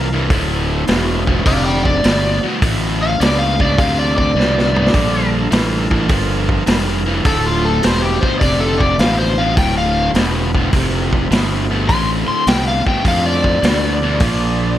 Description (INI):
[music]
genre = blues rock power trio and southern rock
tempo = 104 BPM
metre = 4/4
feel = swing 68% on 8ths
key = D minor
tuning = A4 = 439 Hz
[part]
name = overdriven slide guitar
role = melody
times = 0.0-14.8 s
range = F4 to C6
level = -19 LUFS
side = left 2 dB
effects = none
[part]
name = overdriven tonewheel organ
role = sustained chords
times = 0.0-14.8 s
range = C4 to A5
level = -30 LUFS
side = right 3 dB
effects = none
[part]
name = distorted electric guitar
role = riff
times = 0.0-14.8 s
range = D2 to F3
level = -19 LUFS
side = equal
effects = distortion
[part]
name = fuzz fingered electric bass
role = bass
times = 0.0-14.8 s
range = D1 to F2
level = -19 LUFS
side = equal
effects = overdrive
[part]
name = vintage drum kit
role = drums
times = 0.3-14.4 s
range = hi-hat, kick drum, snare drum, toms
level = -19 LUFS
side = equal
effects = none
[sound]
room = light reverb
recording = none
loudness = -13 LUFS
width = side -12 dB against mid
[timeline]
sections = 0.0-14.8 A section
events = drum fill 4.4-4.9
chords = 0.3 Dm7; 4.9 Gm7; 7.2 Dm7; 14.2 Bb7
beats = | 0.30 0.88 1.46 2.03 | 2.61 3.19 3.77 4.35 | 4.93 5.51 6.09 6.67 | 7.25 7.83 8.41 8.99 | 9.57 10.15 10.73 11.31 | 11.89 12.47 13.05 13.63 | 14.21